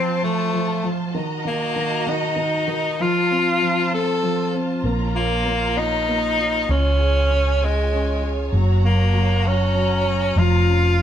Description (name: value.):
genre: pop.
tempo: 65 BPM (dotted quarters).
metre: 6/8.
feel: straight.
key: Bb harmonic minor.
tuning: A4 = 440 Hz.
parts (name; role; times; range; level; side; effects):
bright tenor saxophone; melody; 0.0-11.0 s; Ab3 to A4; -21 LUFS; left 1 dB; none.
dark concert grand piano; accompaniment; 0.0-11.0 s; Eb3 to Ab4; -25 LUFS; right 1 dB; none.
warm studio string section; sustained chords; 0.0-11.0 s; F4 to Bb5; -28 LUFS; equal; none.
hollow-body short-scale fingered electric bass; bass; 4.8-11.0 s; F1 to Db2; -20 LUFS; equal; none.
room: moderate studio reverb, RT60 0.9 s.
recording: band playing live in one room.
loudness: -18 LUFS.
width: side -10 dB against mid.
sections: 0.0-11.0 A section.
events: none.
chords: 0.0 F; 1.1 Ebm; 3.0 F; 4.8 Bbm; 6.7 Db; 8.5 Gb; 10.4 Bbm/F.